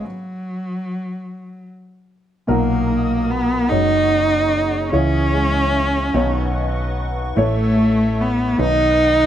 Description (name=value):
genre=acoustic folk-pop ballad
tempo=49 BPM (dotted quarters)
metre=6/8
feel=straight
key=B major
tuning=A4 = 440 Hz
part: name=warm cello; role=melody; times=0.0-9.3 s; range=F#3 to D#4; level=-19 LUFS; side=equal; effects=none
part: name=dark upright piano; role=accompaniment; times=0.0-9.3 s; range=F#1 to C#5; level=-24 LUFS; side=left 1 dB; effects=none
part: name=hollow soft pad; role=sustained chords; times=0.0-9.3 s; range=G#4 to D#6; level=-30 LUFS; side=equal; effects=ensemble chorus
part: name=felt-muted upright piano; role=arpeggios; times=0.0-9.3 s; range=D#3 to G#4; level=-26 LUFS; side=equal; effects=none
part: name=hollow-body short-scale fingered electric bass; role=bass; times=2.5-9.3 s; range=F#1 to C#2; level=-22 LUFS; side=equal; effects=none
room=moderate booth ambience, RT60 0.2 s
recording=none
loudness=-16 LUFS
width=side -10 dB against mid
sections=0.0-2.5 A section; 2.5-9.3 B section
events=stop 0.1-2.5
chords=0.1 N.C.; 2.5 Bmaj7; 3.7 F#sus2; 4.9 C#m; 6.1 Badd9; 7.4 A; 8.6 B